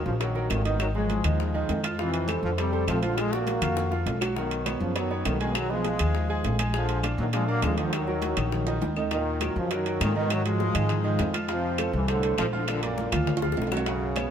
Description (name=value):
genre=latin, salsa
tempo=202 BPM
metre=4/4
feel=straight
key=Eb minor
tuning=A4 = 440 Hz
part: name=brilliant trombone section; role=melody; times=0.0-14.3 s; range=Gb2 to Gb4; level=-30 LUFS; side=left 1 dB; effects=none
part: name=bright baby grand piano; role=accompaniment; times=0.0-14.3 s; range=Eb3 to Ab5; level=-31 LUFS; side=right 4 dB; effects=none
part: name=upright bass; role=bass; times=0.0-14.3 s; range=Ab1 to Bb2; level=-29 LUFS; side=left 1 dB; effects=none
part: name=bongos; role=percussion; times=0.1-14.3 s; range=none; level=-37 LUFS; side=left 8 dB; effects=none
part: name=congas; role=percussion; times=0.1-14.3 s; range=none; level=-36 LUFS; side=equal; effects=none
part: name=timbales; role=percussion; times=0.2-14.3 s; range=none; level=-35 LUFS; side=right 5 dB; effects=none
part: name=claves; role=percussion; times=0.5-14.3 s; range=none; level=-40 LUFS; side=left 5 dB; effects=none
room=moderate plate reverb, RT60 3.1 s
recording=heard from further back in the room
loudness=-24 LUFS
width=side -8 dB against mid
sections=0.0-9.1 A section; 9.1-14.3 A section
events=drum fill 3.2-4.4, 8.7-9.1, 13.3-13.9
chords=0.0 Ebm; 0.8 Ab5; 2.0 F; 3.2 Bb; 4.4 Badd9; 5.5 Abmadd9/Cb; 6.7 Bb7; 7.9 Ebm; 10.3 Ab5; 11.5 F; 12.7 Bb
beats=0.21 0.51 | 0.80 1.10 1.40 1.69 | 1.99 2.29 2.58 2.88 | 3.18 3.47 3.77 4.07 | 4.36 4.66 4.96 5.25 | 5.55 5.85 6.14 6.44 | 6.74 7.04 7.33 7.63 | 7.93 8.22 8.52 8.82 | 9.12 9.41 9.71 10.01 | 10.30 10.60 10.90 11.20 | 11.49 11.79 12.09 12.38 | 12.68 12.98 13.27 13.57 | 13.87 14.16